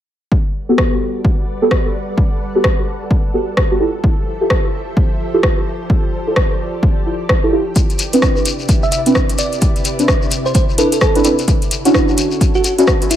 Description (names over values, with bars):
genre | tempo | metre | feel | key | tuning
UK garage, two-step garage | 129 BPM | 4/4 | swing 61% on 16ths | G major | A4 = 440 Hz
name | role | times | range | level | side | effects
soft string machine | sustained chords | 0.7-13.2 s | C3 to F#5 | -26 LUFS | equal | ensemble chorus, sidechain pumping
electronic kick drum | drums | 0.3-13.0 s | none | -16 LUFS | equal | overdrive
deep mellow chord stab | stabs | 0.7-12.9 s | B3 to B4 | -17 LUFS | right 1 dB | chorus, analog delay
house drum kit | drums | 0.8-13.2 s | hi-hat, rim click | -19 LUFS | equal | overdrive
shekere | percussion | 7.8-13.2 s | none | -24 LUFS | left 5 dB | analog delay
bell-like FM electric piano | melody | 8.8-13.2 s | E4 to E5 | -20 LUFS | right 1 dB | chorus, analog delay
room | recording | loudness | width
light reverb, digital ambience | echo-heavy mix | -13 LUFS | side -11 dB against mid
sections
0.3-13.2 A section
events
filter sweep on synth stab 0.3-13.2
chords
0.3 Gmaj9; 3.8 Fmaj9; 7.8 Cmaj9; 11.5 Dmaj9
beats
| 0.32 0.78 1.25 1.71 | 2.18 2.64 3.11 3.57 | 4.04 4.50 4.97 5.43 | 5.90 6.36 6.83 7.29 | 7.76 8.22 8.69 9.15 | 9.62 10.08 10.55 11.01 | 11.48 11.94 12.41 12.88